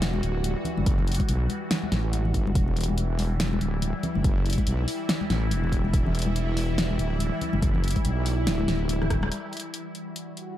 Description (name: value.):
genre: deep dubstep.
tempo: 142 BPM.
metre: 4/4.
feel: swing 59% on 16ths, half-time.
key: E minor.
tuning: A4 = 439 Hz.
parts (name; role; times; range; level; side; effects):
bowed-like drone; sustained chords; 0.0-10.6 s; E3 to F#4; -31 LUFS; equal; built-in reverb, phaser.
wobble bass; bass; 0.0-9.3 s; D1 to B1; -26 LUFS; equal; chorus.
deep house drum kit; drums; 0.0-10.5 s; hi-hat, rim click, snare drum; -30 LUFS; equal; none.
congas; percussion; 0.1-9.3 s; none; -33 LUFS; left 4 dB; none.
electronic kick drum; drums; 0.9-9.2 s; none; -25 LUFS; equal; none.
room: light reverb.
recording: dark, warm production.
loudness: -23 LUFS.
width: side -12 dB against mid.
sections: 0.0-9.3 A section; 9.3-10.6 B section.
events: drum fill 9.0-9.3; band accent 9.2; filter sweep on synth drone 9.3-10.6.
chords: 0.0 Emadd9.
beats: 0.02 0.44 | 0.86 1.29 1.71 2.13 | 2.56 2.98 3.40 3.82 | 4.25 4.67 5.09 5.51 | 5.93 6.36 6.78 7.20 | 7.62 8.05 8.47 8.89 | 9.31 9.74 10.16.